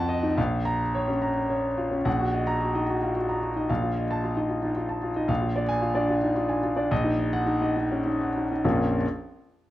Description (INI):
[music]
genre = classical, virtuoso piano study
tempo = 67-76 BPM (dotted quarters)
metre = 6/8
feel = rubato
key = Bb minor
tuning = A4 = 440 Hz
[part]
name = clear grand piano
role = solo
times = 0.0-9.1 s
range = Bb1 to Bb5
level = -23 LUFS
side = equal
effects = none
[sound]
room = light reverb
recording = worn, warbling old tape, cassette tape, warbly pitch drift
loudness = -23 LUFS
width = side -14 dB against mid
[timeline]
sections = 0.0-2.1 A section; 2.1-8.6 B section; 8.6-9.7 C section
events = slowing down 4.5-8.6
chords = 0.4 Bbm; 2.1 Ebm/Bb; 3.7 F7/Bb; 5.3 Bb7; 6.9 Ebm/Bb; 8.6 Bbm